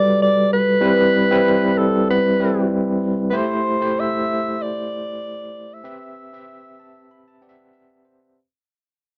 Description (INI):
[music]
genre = soul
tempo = 95 BPM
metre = 4/4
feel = swing 54% on 16ths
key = unclear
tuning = A4 = 440 Hz
[part]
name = breathy alto saxophone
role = melody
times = 0.0-7.8 s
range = A4 to E5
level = -22 LUFS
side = equal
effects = none
[part]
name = overdriven tine electric piano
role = accompaniment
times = 0.0-8.4 s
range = G3 to B5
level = -22 LUFS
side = equal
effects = fast tremolo
[sound]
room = light reverb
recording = dry, close 1970s-style studio recording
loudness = -19 LUFS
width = mono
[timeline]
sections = 0.0-8.4 A section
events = fade-out 0.0-8.4; tine electric piano fill 6.5-8.4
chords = 0.0 Gmaj9; 0.8 Cmaj7/G; 3.3 Am7; 5.9 Cmaj7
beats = 0.19 | 0.82 1.45 2.08 2.71 | 3.34 3.97 4.60 5.23 | 5.86 6.49 7.12 7.75